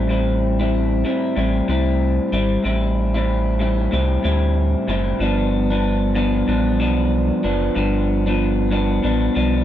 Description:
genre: indie pop, bedroom pop.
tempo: 94 BPM.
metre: 4/4.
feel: swing 60% on 16ths.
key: unclear.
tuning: A4 = 440 Hz.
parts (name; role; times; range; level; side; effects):
electric guitar through a small old amp; accompaniment; 0.0-9.6 s; G2 to E4; -19 LUFS; left 1 dB; lush chorus, warbly pitch drift.
sub bass with octave; bass; 0.0-9.6 s; F#1 to D2; -21 LUFS; equal; none.
room: light reverb.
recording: none.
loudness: -17 LUFS.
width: side -11 dB against mid.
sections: 0.0-9.6 A section.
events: none.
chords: 0.0 Am7; 5.2 G7.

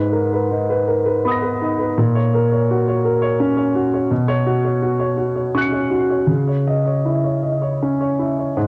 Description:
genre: neoclassical minimalist piano.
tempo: 76-85 BPM.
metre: 3/4.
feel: rubato.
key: unclear.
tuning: A4 = 441 Hz.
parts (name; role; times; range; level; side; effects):
warm baby grand piano; solo; 0.0-8.7 s; G#2 to C#7; -18 LUFS; equal; cassette tape.
room: moderate spring reverb, RT60 1.2 s, small room ambience.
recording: home recording on cassette.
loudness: -19 LUFS.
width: mono.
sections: 0.0-8.7 A section.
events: none.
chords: 0.0 G#madd9; 2.0 F#/A#; 4.1 Bsus2; 6.3 C#madd9.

